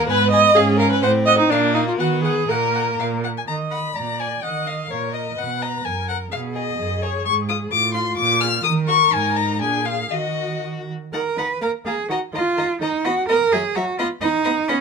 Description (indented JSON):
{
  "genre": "quick classical-period movement for string quartet",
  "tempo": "126 BPM",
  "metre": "2/4",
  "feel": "rubato",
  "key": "Eb minor",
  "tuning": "A4 = 439 Hz",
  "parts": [
    { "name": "clear violin", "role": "second line", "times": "0.0-14.8 s", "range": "Bb3 to Gb5", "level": "-27 LUFS", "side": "left 3 dB", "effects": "none" },
    { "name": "rich viola", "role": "accompaniment", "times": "0.0-14.8 s", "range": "Eb3 to Eb5", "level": "-22 LUFS", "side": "right 1 dB", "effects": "none" },
    { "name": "rich cello", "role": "bass", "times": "0.0-14.8 s", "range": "Gb2 to Cb5", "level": "-23 LUFS", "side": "right 4 dB", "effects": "none" },
    { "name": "rich violin", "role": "melody", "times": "0.1-14.8 s", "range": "Db5 to F6", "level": "-22 LUFS", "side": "left 6 dB", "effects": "none" }
  ],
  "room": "little or no reverb",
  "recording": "close, detailed microphones",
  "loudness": "-18 LUFS",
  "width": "side -5 dB against mid",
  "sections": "0.0-3.5 A section; 3.5-11.1 B section; 11.1-14.8 B section",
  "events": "none",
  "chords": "0.1 Abm; 0.6 Bbm7/Ab; 1.0 Adim; 1.5 Bb; 2.0 Ebm; 2.5 Gb/Bb; 3.5 N.C.; 4.0 Bb7; 4.4 Eb5; 5.4 B5; 5.9 Gb; 6.3 B6; 7.3 N.C.; 7.7 F/A; 8.2 Bb; 8.6 Eb5; 9.1 Ab5; 9.6 Bb7; 10.1 Ebm; 11.1 Eb5; 11.6 Bb5; 12.1 Eb5; 13.1 B5; 13.5 Gb7(no3); 14.0 B"
}